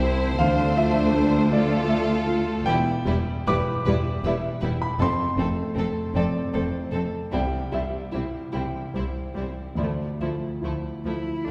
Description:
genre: cinematic, emotional film score for orchestra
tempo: 47-54 BPM (dotted quarters)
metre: 6/8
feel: rubato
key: D dorian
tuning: A4 = 440 Hz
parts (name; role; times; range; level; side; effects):
- rich studio violin section; melody; 0.0-11.5 s; E4 to C5; -36 LUFS; equal; none
- rich studio violin section; second line; 0.0-11.5 s; A3 to F4; -34 LUFS; equal; none
- rich studio viola section; accompaniment; 0.0-11.5 s; F3 to C4; -35 LUFS; equal; none
- warm grand piano; accompaniment; 0.0-11.5 s; C2 to D6; -29 LUFS; equal; none
- clear studio cello section; bass; 0.0-11.5 s; C2 to F2; -31 LUFS; equal; none
- clear studio double bass section; bass; 0.0-11.5 s; E1 to D2; -33 LUFS; equal; none
- rich cello; melody; 11.1-11.5 s; D4 to E4; -34 LUFS; equal; none
room: wet scoring stage reverb, RT60 1.8 s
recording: heard from further back in the room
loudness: -25 LUFS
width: mono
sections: 0.0-11.5 A section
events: none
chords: 0.4 Dmadd9; 2.7 Em7; 5.0 F; 7.3 C; 9.8 Dmadd9

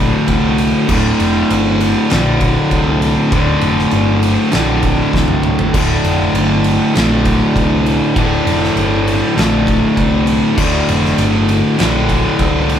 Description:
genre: stoner and doom metal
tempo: 99 BPM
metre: 4/4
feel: straight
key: D minor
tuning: A4 = 440 Hz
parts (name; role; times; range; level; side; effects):
- fuzz guitar; riff; 0.0-12.8 s; D2 to D3; -13 LUFS; equal; distortion
- overdriven picked electric bass; bass; 0.0-12.8 s; D1 to C2; -19 LUFS; equal; none
- oversized low-tuned drum kit; drums; 0.3-12.8 s; crash cymbal, kick drum, ride cymbal, snare drum, toms; -19 LUFS; equal; none
room: light reverb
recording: band playing live in one room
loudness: -11 LUFS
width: side -9 dB against mid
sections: 0.0-12.8 A section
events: drum fill 5.1-5.8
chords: 0.0 D5

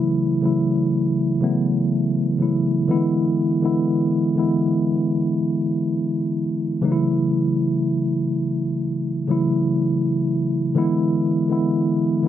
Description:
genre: R&B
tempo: 61 BPM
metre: 4/4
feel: straight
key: unclear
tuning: A4 = 440 Hz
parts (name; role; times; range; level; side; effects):
- mellow tine electric piano; solo; 0.0-12.3 s; C#3 to E4; -18 LUFS; equal; medium stereo tremolo
room: light reverb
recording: none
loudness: -18 LUFS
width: side -11 dB against mid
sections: 0.0-2.9 A section; 2.9-12.3 B section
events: none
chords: 0.0 F#m7; 2.9 E7; 6.8 F#m7; 10.8 E7

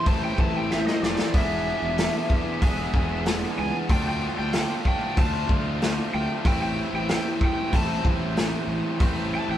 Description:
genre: blues rock power trio and southern rock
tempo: 94 BPM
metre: 4/4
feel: straight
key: A minor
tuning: A4 = 440 Hz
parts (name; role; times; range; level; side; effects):
- overdriven slide guitar; melody; 0.0-9.6 s; D5 to A5; -30 LUFS; left 1 dB; none
- overdriven tonewheel organ; sustained chords; 0.0-9.6 s; C4 to C5; -38 LUFS; right 5 dB; slow rotary speaker, chorus vibrato
- overdriven electric guitar; riff; 0.0-9.6 s; A2 to G#4; -28 LUFS; equal; none
- fuzz fingered electric bass; bass; 0.1-9.6 s; E1 to D2; -30 LUFS; equal; overdrive
- raw garage drum kit; drums; 0.1-9.2 s; hi-hat, kick drum, snare drum; -25 LUFS; equal; none
room: light reverb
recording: band playing live in one room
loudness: -22 LUFS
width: side -11 dB against mid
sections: 0.0-9.6 A section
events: electric slide guitar solo 0.0-9.6; drum fill 0.7-1.3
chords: 0.0 Am7; 1.3 E7b9; 3.9 Dm7; 6.5 Am9

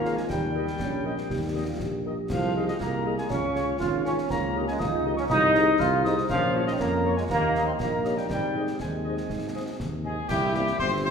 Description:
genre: military-style march for wind band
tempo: 120 BPM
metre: 2/4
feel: straight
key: Ab major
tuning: A4 = 443 Hz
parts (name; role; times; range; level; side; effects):
- warm trumpet section; melody; 0.0-11.1 s; G4 to F5; -35 LUFS; left 2 dB; none
- warm euphonium; second line; 0.0-11.1 s; G2 to Ab4; -34 LUFS; right 3 dB; none
- wooden piccolo; second line; 0.0-11.1 s; Eb5 to F6; -33 LUFS; left 4 dB; none
- dark French horn section; accompaniment; 0.0-11.1 s; Bb3 to Db5; -36 LUFS; left 6 dB; none
- warm trombone section; sustained chords; 0.0-11.1 s; Eb3 to F4; -27 LUFS; right 1 dB; none
- dark tuba; bass; 0.0-11.1 s; G1 to Ab2; -30 LUFS; right 1 dB; none
- concert snare drum, concert bass drum and clash cymbals; drums; 0.0-11.1 s; none; -35 LUFS; left 1 dB; none
room: wet scoring stage reverb, RT60 1.6 s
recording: minimal, uncompressed stereo recording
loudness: -23 LUFS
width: side -6 dB against mid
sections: 0.0-10.3 A section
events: none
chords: 0.3 Eb; 2.3 Ab/C; 3.3 Db; 4.3 Eb7/Db; 5.3 Ab/C; 6.3 Bbm; 7.3 Eb7; 8.3 Ab; 10.3 C7

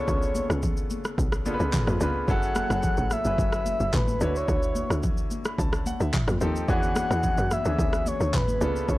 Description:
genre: amapiano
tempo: 109 BPM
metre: 4/4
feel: straight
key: unclear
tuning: A4 = 441 Hz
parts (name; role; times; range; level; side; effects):
- breathy flute-like synth lead; melody; 0.0-9.0 s; B4 to F#5; -29 LUFS; equal; chorus, analog delay
- clear concert grand piano; accompaniment; 0.0-9.0 s; C#3 to B5; -32 LUFS; equal; none
- tight log drum bass; bass; 0.0-9.0 s; F#1 to F#2; -28 LUFS; equal; none
- deep house drum kit; drums; 0.1-9.0 s; handclaps, kick drum, rim click, shaker, toms; -27 LUFS; equal; none
- congas; percussion; 0.3-8.7 s; none; -34 LUFS; left 2 dB; none
room: digital ambience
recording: dry, gritty hardware recording, transformer saturation, cassette tape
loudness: -23 LUFS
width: side -17 dB against mid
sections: 0.0-9.0 A section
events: none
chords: 0.0 C#7b9b13; 2.3 F#m9; 4.2 Dmaj9; 6.1 F9; 6.7 E13

